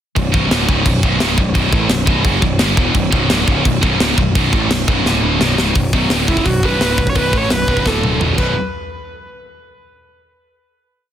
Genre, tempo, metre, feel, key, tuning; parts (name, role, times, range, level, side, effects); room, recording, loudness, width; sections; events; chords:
heavy metal; 172 BPM; 4/4; straight; B minor; A4 = 440 Hz
scooped high-gain guitar; riff; 0.2-8.5 s; B1 to A3; -17 LUFS; equal; distortion
fuzz picked electric bass; bass; 0.2-8.5 s; B0 to A1; -19 LUFS; equal; overdrive
tight metal drum kit; drums; 0.2-8.5 s; crash cymbal, hi-hat, kick drum, snare drum, toms; -17 LUFS; equal; soft clipping on kick
warm viola; melody; 6.3-8.5 s; E4 to C#5; -20 LUFS; right 2 dB; tape echo
little or no reverb; dense, heavily limited modern master; -12 LUFS; side -10 dB against mid
0.2-5.7 riff; 5.7-8.6 outro; 8.6-10.0 final hit
drum fill 5.0-5.7, 7.9-8.6
0.2 Bm; 5.0 D5; 5.4 B5; 5.7 Bm; 7.9 D5; 8.2 B5; 8.6 N.C.